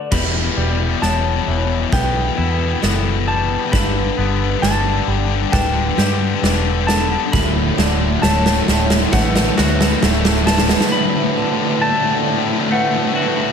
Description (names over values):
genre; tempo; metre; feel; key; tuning
post-rock; 67 BPM; 4/4; straight; D major; A4 = 440 Hz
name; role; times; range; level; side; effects
clean lap steel guitar; melody; 0.0-13.5 s; D5 to B5; -23 LUFS; left 2 dB; slapback echo
twangy electric guitar; arpeggios; 0.0-13.5 s; D2 to G4; -25 LUFS; left 1 dB; warbly pitch drift, slapback echo
vibraphone with medium mallets; arpeggios; 0.0-13.5 s; A4 to D5; -28 LUFS; right 4 dB; slapback echo
pedal steel guitar; sustained chords; 0.1-13.5 s; D3 to A5; -34 LUFS; left 1 dB; none
cranked stack guitar; riff; 0.1-13.5 s; D2 to D3; -21 LUFS; left 13 dB; overdrive
vintage muted fingered electric bass; bass; 0.1-10.7 s; D1 to G2; -20 LUFS; equal; none
huge arena drum kit; drums; 0.1-11.0 s; crash cymbal, kick drum, snare drum; -19 LUFS; right 1 dB; none
thick fuzz guitar; riff; 7.3-13.5 s; D2 to A2; -23 LUFS; right 13 dB; distortion
room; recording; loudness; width
light reverb, small room ambience; none; -14 LUFS; side -7 dB against mid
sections
0.1-13.5 A section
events
build-up 0.1-13.5; drum fill 0.1-10.9; break 10.9-13.5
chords
0.1 Emadd9; 3.7 Gadd9; 7.3 D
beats
| 0.12 1.02 1.93 2.83 | 3.73 4.63 5.54 6.44 | 7.34 8.23 9.13 10.03 | 10.93 11.82 12.72